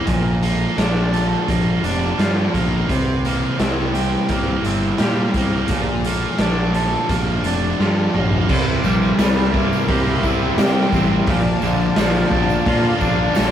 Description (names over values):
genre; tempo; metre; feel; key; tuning
rock, shoegaze and dream pop; 86 BPM; 4/4; straight; C mixolydian; A4 = 440 Hz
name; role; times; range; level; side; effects
twangy electric guitar; arpeggios; 0.0-13.5 s; E3 to G4; -29 LUFS; left 1 dB; none
overdriven electric guitar; riff; 0.0-13.5 s; Bb2 to Bb4; -22 LUFS; right 5 dB; none
thick fuzz guitar; riff; 0.0-13.5 s; Bb2 to A4; -24 LUFS; left 4 dB; distortion
fuzz fingered electric bass; bass; 0.1-13.5 s; F1 to C3; -21 LUFS; equal; overdrive
raw garage drum kit; drums; 0.1-13.5 s; crash cymbal, hi-hat, kick drum, snare drum, toms; -22 LUFS; equal; none
brassy analog pad; sustained chords; 8.5-13.5 s; Bb4 to C6; -26 LUFS; left 1 dB; chorus
overdriven electric guitar; riff; 8.5-13.5 s; Bb2 to E4; -27 LUFS; left 1 dB; none
tambourine; percussion; 8.5-13.5 s; none; -42 LUFS; right 4 dB; none
room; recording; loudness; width
moderate stone room reverb, RT60 0.9 s; rough rehearsal-room recording, warm saturation; -16 LUFS; side -10 dB against mid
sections
0.0-8.5 A section; 8.5-13.5 B section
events
drum fill 7.8-8.5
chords
0.1 Bbmaj7; 2.9 C7; 5.7 Bbmaj7; 8.5 C7; 11.3 Bbmaj7